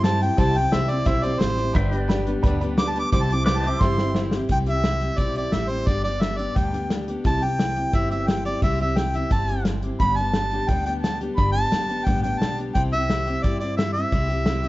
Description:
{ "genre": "honky-tonk and classic country", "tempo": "175 BPM", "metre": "4/4", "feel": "straight", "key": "C major", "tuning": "A4 = 440 Hz", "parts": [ { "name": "clear harmonica", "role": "melody", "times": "0.0-14.7 s", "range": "C5 to D6", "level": "-25 LUFS", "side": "equal", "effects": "none" }, { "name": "picked steel-string acoustic guitar", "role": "accompaniment", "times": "0.0-14.7 s", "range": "G2 to G4", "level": "-27 LUFS", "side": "left 1 dB", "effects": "none" }, { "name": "tack piano", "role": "accompaniment", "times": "0.0-4.4 s", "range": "D4 to C5", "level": "-31 LUFS", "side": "right 2 dB", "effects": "none" }, { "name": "pedal steel guitar", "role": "sustained chords", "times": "0.0-4.5 s", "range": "B4 to G5", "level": "-35 LUFS", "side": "equal", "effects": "none" }, { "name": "upright bass", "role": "bass", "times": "0.0-14.7 s", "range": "G1 to G2", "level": "-26 LUFS", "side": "equal", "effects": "none" }, { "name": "natural country drum kit", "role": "drums", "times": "0.0-14.7 s", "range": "hi-hat, kick drum, snare drum", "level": "-24 LUFS", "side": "equal", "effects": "none" } ], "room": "light reverb", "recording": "worn, warbling old tape, cassette tape, warbly pitch drift, nothing above 7.8 kHz", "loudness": "-20 LUFS", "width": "side -18 dB against mid", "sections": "0.0-4.5 A section; 4.5-14.7 B section", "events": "harmonica solo 0.0-4.5; drum fill 3.8-4.5", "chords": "0.0 C; 1.8 G; 3.1 C; 5.9 G; 7.2 C; 10.0 G; 12.8 C" }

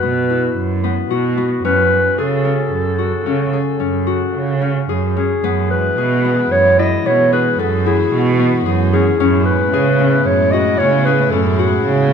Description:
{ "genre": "contemporary instrumental, chamber music in an uneven meter", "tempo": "112 BPM", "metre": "7/4", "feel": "straight", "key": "F# minor", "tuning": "A4 = 440 Hz", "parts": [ { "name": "breathy clarinet", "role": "melody", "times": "0.0-12.1 s", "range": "F#4 to D#5", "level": "-17 LUFS", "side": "left 1 dB", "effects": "none" }, { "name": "Celtic harp", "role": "arpeggios", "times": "0.0-12.1 s", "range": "B3 to G#4", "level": "-19 LUFS", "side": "left 7 dB", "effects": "none" }, { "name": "warm cello", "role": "bass", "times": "0.0-12.1 s", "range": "F#2 to C#3", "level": "-17 LUFS", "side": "right 5 dB", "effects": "none" }, { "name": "dark studio string section", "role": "sustained chords", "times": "5.4-12.1 s", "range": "A2 to F#4", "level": "-24 LUFS", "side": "left 2 dB", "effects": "none" } ], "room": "moderate recital hall reverb, RT60 1.4 s", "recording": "dark, warm production", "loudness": "-13 LUFS", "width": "side -7 dB against mid", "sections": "0.0-5.4 A section; 5.4-12.1 B section", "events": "none", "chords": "0.0 Bsus4; 1.6 F#madd9; 9.2 F#m11" }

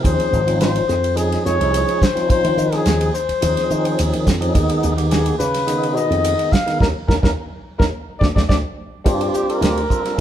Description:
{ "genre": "electric jazz fusion", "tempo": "106 BPM", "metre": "4/4", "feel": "straight", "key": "unclear", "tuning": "A4 = 441 Hz", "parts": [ { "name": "trumpet with bucket mute", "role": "melody", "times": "0.0-10.2 s", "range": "G4 to F5", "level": "-21 LUFS", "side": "left 3 dB", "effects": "none" }, { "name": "tonewheel organ", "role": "accompaniment", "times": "0.0-10.2 s", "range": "Eb3 to Bb4", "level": "-22 LUFS", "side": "right 1 dB", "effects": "slow rotary speaker" }, { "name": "slap bass with an envelope filter", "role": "bass", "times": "0.0-9.8 s", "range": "Ab1 to Eb3", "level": "-21 LUFS", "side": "equal", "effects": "none" }, { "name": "damped 70s drum kit", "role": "drums", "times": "0.0-10.2 s", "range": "hi-hat, kick drum, ride cymbal, snare drum", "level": "-21 LUFS", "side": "right 1 dB", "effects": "none" } ], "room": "moderate large studio reverb, RT60 1.4 s", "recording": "band playing live in one room", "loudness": "-16 LUFS", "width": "side -10 dB against mid", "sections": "0.0-9.1 A section; 9.1-10.2 B section", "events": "band accent 6.8-9.1; drum fill 7.9-9.1; muted trumpet solo 9.1-10.2", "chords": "0.0 Dbmaj9; 4.6 Abm/Eb; 6.8 Eb5; 7.9 D5; 9.1 G9sus4" }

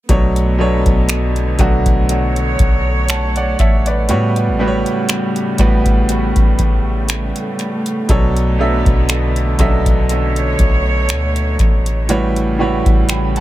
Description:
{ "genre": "contemporary R&B", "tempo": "60 BPM", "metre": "4/4", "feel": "swing 54% on 16ths", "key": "B minor", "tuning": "A4 = 439 Hz", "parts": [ { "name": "bright baby grand piano", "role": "accompaniment", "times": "0.1-13.4 s", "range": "A2 to B5", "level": "-18 LUFS", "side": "right 1 dB", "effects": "analog delay" }, { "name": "warm chamber string section", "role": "sustained chords", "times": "0.1-13.4 s", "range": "C#3 to C#5", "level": "-23 LUFS", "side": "right 1 dB", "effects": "none" }, { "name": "soft 808-style bass", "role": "bass", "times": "0.1-13.4 s", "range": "A1 to A2", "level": "-17 LUFS", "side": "equal", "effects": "none" }, { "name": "booming analog drum machine", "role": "drums", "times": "0.1-13.4 s", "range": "finger snaps, hi-hat, kick drum", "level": "-15 LUFS", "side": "equal", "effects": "none" } ], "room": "digital ambience", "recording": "echo-heavy mix", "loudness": "-13 LUFS", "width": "side -15 dB against mid", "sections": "0.1-13.4 A section", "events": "none", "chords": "0.1 Bm9; 4.1 A13; 8.1 Bm9; 12.1 A13" }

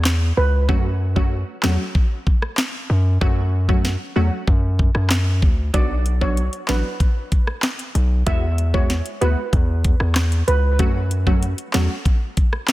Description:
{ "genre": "dancehall", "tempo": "95 BPM", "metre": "4/4", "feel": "straight", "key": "F# minor", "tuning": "A4 = 441 Hz", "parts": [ { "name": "hard-hitting 808-style bass", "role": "bass", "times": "0.0-11.9 s", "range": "A1 to F#2", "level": "-19 LUFS", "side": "equal", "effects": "none" }, { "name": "afro-pop drum kit", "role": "drums", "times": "0.0-12.7 s", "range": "handclaps, hi-hat, kick drum, rim click, snare drum", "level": "-19 LUFS", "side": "equal", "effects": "none" }, { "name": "steel pan", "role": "melody", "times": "0.4-0.5, 5.7-10.6 s", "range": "B4 to E5", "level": "-26 LUFS", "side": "right 3 dB", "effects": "tape echo" }, { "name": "wavetable chord stab", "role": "accompaniment", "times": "0.7-11.9 s", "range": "F#3 to F#4", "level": "-26 LUFS", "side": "equal", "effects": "none" } ], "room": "little or no reverb", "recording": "dense, heavily limited modern master", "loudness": "-17 LUFS", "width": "side -17 dB against mid", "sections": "0.0-12.7 A section", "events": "break 0.0-5.7", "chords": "0.0 N.C.; 0.7 F#m; 5.7 Bm; 8.3 Eadd9; 10.8 F#m" }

